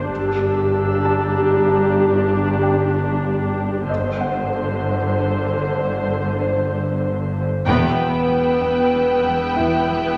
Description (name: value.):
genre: cinematic.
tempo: 95 BPM.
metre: 3/4.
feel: straight.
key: unclear.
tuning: A4 = 440 Hz.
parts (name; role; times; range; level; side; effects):
muted studio viola section; accompaniment; 0.0-10.2 s; D3 to C5; -24 LUFS; equal; none.
muted studio cello section; bass; 0.0-10.2 s; E2 to G2; -30 LUFS; equal; none.
muted studio double bass section; bass; 0.0-10.2 s; E1 to G1; -26 LUFS; equal; none.
sub bass with octave; drone; 0.0-10.2 s; E1 to G1; -34 LUFS; equal; none.
dark concert grand piano; texture; 0.0-10.2 s; E4 to A5; -30 LUFS; equal; none.
muted chamber violin section; texture; 0.1-3.5, 7.7-10.2 s; A5 to G6; -34 LUFS; equal; none.
muted studio violin section; melody; 7.7-10.2 s; G5; -25 LUFS; equal; none.
muted studio violin section; second line; 7.7-10.2 s; B4; -23 LUFS; equal; none.
muted studio cello section; riff; 7.7-10.1 s; E2 to E3; -29 LUFS; equal; none.
room: wet scoring stage reverb, RT60 1.5 s.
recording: none.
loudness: -19 LUFS.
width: mono.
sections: 0.0-7.7 A section; 7.7-10.2 B section.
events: band accent 7.7-8.3.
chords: 0.1 Gsus2; 3.9 Cmadd9/G; 7.7 Em.